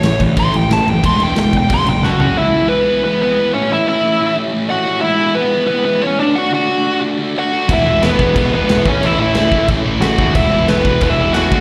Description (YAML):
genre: punk rock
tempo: 180 BPM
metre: 4/4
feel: straight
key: unclear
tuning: A4 = 439 Hz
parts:
  - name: smooth overdriven lead guitar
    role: melody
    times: 0.0-11.6 s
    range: B3 to C6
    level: -18 LUFS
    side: equal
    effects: slapback echo
  - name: crunchy overdriven guitar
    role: riff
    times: 0.0-11.6 s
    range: F#2 to F#4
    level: -21 LUFS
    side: equal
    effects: slapback echo
  - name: distorted electric guitar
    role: riff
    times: 0.0-2.4, 7.7-11.6 s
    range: E2 to D4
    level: -23 LUFS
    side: equal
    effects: distortion, slapback echo
  - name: fuzz picked electric bass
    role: bass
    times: 0.0-2.3, 7.7-11.6 s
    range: E1 to E2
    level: -21 LUFS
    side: equal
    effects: overdrive
  - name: big rock drum kit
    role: drums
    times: 0.0-2.3, 7.7-11.6 s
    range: crash cymbal, kick drum, snare drum, toms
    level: -21 LUFS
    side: equal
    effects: none
room: small room ambience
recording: live gig heard through the venue's PA, recital hall reverb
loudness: -15 LUFS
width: mono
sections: 0.0-2.4 A section; 2.4-11.6 B section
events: lead electric guitar solo 0.0-2.4; drum fill 2.0-2.4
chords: 0.0 A5; 1.0 E; 1.7 F#5; 2.4 E; 3.5 A; 5.0 E; 6.2 D; 7.7 E; 8.9 A; 10.4 E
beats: 0.04 0.37 0.70 | 1.04 1.37 1.71 2.04 | 2.37 2.70 3.04 3.37 | 3.70 4.04 4.37 4.70 | 5.03 5.37 5.70 6.03 | 6.36 6.70 7.03 7.36 | 7.70 8.03 8.36 8.69 | 9.03 9.36 9.69 10.02 | 10.36 10.69 11.02 11.36